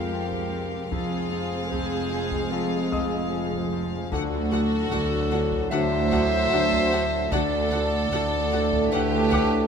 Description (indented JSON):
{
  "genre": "cinematic, suspense film score",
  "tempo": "75 BPM",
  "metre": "4/4",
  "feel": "straight",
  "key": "unclear",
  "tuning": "A4 = 441 Hz",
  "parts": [
    { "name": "warm symphonic violin section", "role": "melody", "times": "0.0-9.4 s", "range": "F5 to F#5", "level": "-36 LUFS", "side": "left 5 dB", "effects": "none" },
    { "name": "mellow clarinet", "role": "second line", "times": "0.0-9.7 s", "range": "Ab4 to E5", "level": "-28 LUFS", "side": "left 2 dB", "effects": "none" },
    { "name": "rich studio violin section", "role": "second line", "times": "0.0-9.7 s", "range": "F4 to C5", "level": "-31 LUFS", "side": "equal", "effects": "none" },
    { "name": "dark symphonic viola section", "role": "accompaniment", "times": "0.0-9.4 s", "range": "D3 to F#5", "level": "-34 LUFS", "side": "right 2 dB", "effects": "none" },
    { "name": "clear trombone section", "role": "sustained chords", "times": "0.0-9.7 s", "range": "F2 to A3", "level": "-33 LUFS", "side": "right 7 dB", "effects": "none" },
    { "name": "dark French horn section", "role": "sustained chords", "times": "0.0-9.7 s", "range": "D3 to A4", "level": "-32 LUFS", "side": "left 3 dB", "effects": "none" },
    { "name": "glass harmonica", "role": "sustained chords", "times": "0.0-9.7 s", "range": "F4 to A5", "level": "-38 LUFS", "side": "right 1 dB", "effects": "none" },
    { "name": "Celtic harp", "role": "riff", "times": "0.0-9.7 s", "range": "F2 to D4", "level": "-32 LUFS", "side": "left 10 dB", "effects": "none" },
    { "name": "dark symphonic double bass section", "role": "bass", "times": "0.0-9.6 s", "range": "F1 to D2", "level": "-31 LUFS", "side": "right 3 dB", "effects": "none" },
    { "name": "rich symphonic cello section", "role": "bass", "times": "0.0-9.6 s", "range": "D2 to F2", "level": "-30 LUFS", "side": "right 3 dB", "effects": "none" },
    { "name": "dark grand piano", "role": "texture", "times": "0.0-9.7 s", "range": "D#5 to D#6", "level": "-35 LUFS", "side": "left 2 dB", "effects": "none" },
    { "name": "taiko ensemble", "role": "drums", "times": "0.3-9.7 s", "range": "none", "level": "-35 LUFS", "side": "equal", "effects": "none" }
  ],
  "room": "moderate concert hall reverb, RT60 1.9 s",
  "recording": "none",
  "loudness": "-22 LUFS",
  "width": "side -6 dB against mid",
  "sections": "0.0-9.7 A section",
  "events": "none",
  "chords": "0.0 Fm; 4.1 D"
}